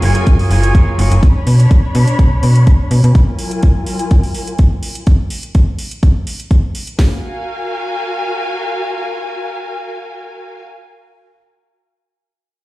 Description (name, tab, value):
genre	filtered disco house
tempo	125 BPM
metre	4/4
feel	straight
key	F# major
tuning	A4 = 437 Hz
part	bright concert grand piano	accompaniment	0.0-1.2 s	F#3 to G#4	-25 LUFS	left 1 dB	phaser, sidechain pumping, low-pass filter
part	warm studio string section	sustained chords	0.0-10.6 s	F#3 to B5	-22 LUFS	left 1 dB	vintage 12-bit sampler grit, sidechain pumping, low-pass filter
part	electric guitar with an envelope filter	riff	0.0-1.2 s	A#3 to C#5	-22 LUFS	right 3 dB	sidechain pumping, low-pass filter
part	slap-like FM bass	bass	0.0-3.1 s	F#1 to B2	-11 LUFS	equal	tube saturation, sidechain pumping, low-pass filter
part	electronic hi-hat	drums	0.0-7.0 s	none	-29 LUFS	right 2 dB	sidechain pumping on hats, sidechain pumping on perc
part	house drum kit	drums	0.3-7.1 s	hi-hat, kick drum, snare drum	-10 LUFS	equal	none
room	digital ambience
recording	played on a big sound system in a bare room, stone room reverb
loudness	-11 LUFS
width	side -19 dB against mid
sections	0.0-7.0 A section; 7.0-10.8 B section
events	filter sweep 0.0-7.0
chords	0.0 F#maj9; 1.2 Bmadd9; 3.1 F#maj9; 5.1 N.C.; 7.0 F#maj9